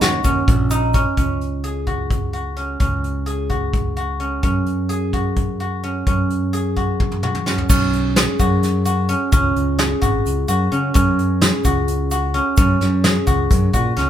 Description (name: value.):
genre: progressive instrumental, band music in an uneven meter.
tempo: 258 BPM (eighths).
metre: 7/8.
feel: straight.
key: unclear.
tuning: A4 = 441 Hz.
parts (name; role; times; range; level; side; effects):
guzheng; arpeggios; 0.0-14.1 s; Db4 to Ab4; -21 LUFS; right 1 dB; none.
modern bright fingered electric bass; bass; 0.0-14.1 s; Ab1 to Db3; -21 LUFS; left 1 dB; none.
soft brush drum kit; drums; 0.0-14.1 s; crash cymbal, hi-hat, kick drum, snare drum, toms; -19 LUFS; equal; none.
egg shaker; percussion; 0.0-1.1, 7.7-14.0 s; none; -30 LUFS; right 6 dB; none.
room: light reverb.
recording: band playing live in one room.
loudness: -16 LUFS.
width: side -10 dB against mid.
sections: 0.0-1.2 A section; 1.2-7.7 B section; 7.7-14.1 C section.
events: drum fill 7.0-7.7.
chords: 0.0 Ebm7; 1.2 Dbsus4; 4.4 Gbsus2; 7.7 Cbsus2; 9.3 Dbsus4; 10.9 Gb5.